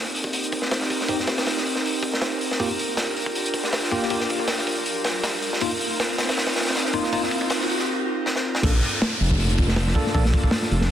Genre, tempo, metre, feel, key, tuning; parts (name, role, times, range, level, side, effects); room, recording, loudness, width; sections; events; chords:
drum and bass, jungle; 159 BPM; 4/4; swing 54% on 16ths; A4 = 438 Hz
airy breathy pad; sustained chords; 0.0-10.9 s; Bb3 to Bb4; -27 LUFS; right 1 dB; chorus
crunchy breakbeat drum kit; drums; 0.1-10.9 s; crash cymbal, hi-hat, kick drum, snare drum; -24 LUFS; equal; high-pass filter on kick, high-pass filter on hats, high-pass filter on cymbals, high-pass filter on snare, high-pass filter on room
tine electric piano; stabs; 1.1-10.2 s; Bb3 to A4; -30 LUFS; left 2 dB; medium stereo tremolo, low-pass filter, dub echo
riser and downlifter; sound effects; 4.8-10.9 s; -32 LUFS; equal
dark detuned saw bass; bass; 8.6-10.9 s; F1 to Bb1; -21 LUFS; equal
moderate echo chamber reverb, RT60 1.9 s, small room ambience; dense, heavily limited modern master; -21 LUFS; side -10 dB against mid
0.0-8.6 A section; 8.6-10.9 B section
build-up 0.0-8.6; riser 4.8-7.9; drum fill 8.3-8.6; drop 8.6-10.9
0.0 Eb6; 2.6 Gm7; 5.6 F7sus4; 8.6 Bbmaj7